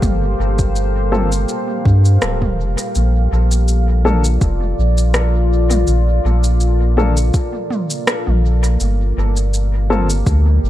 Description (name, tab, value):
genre	ambient dub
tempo	82 BPM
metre	4/4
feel	swing 54% on 16ths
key	unclear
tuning	A4 = 440 Hz
part	deep dark ambient pad	sustained chords	0.0-10.7 s	Bb3 to F5	-22 LUFS	equal	chorus, built-in reverb
part	soft dub sub bass	bass	0.0-10.7 s	D1 to G2	-14 LUFS	equal	none
part	electronic kick drum	drums	0.0-10.4 s	none	-18 LUFS	equal	overdrive, studio reverb
part	organic electronic drum kit	drums	0.0-10.4 s	rim click, shaker, toms	-22 LUFS	equal	overdrive, studio reverb, dub echo
part	warm upright piano	stabs	1.1-10.1 s	Bb3 to A4	-23 LUFS	left 4 dB	dub echo
room	little or no reverb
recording	echo-heavy mix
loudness	-13 LUFS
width	side -14 dB against mid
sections	0.0-3.0 A section; 3.0-10.7 B section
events	none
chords	0.0 Gm11; 3.0 Bbmaj7; 8.8 Gm9